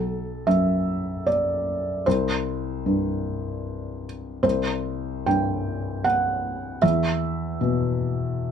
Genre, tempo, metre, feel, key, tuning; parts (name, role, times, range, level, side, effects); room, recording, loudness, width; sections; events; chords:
neoclassical minimalist piano; 76 BPM; 3/4; rubato; A4 = 440 Hz
felt-muted upright piano; solo; 0.0-8.5 s; B1 to G5; -22 LUFS; equal
light reverb; -22 LUFS; side -7 dB against mid
0.0-8.5 A section
0.0 Bm7; 2.1 C5; 6.8 E5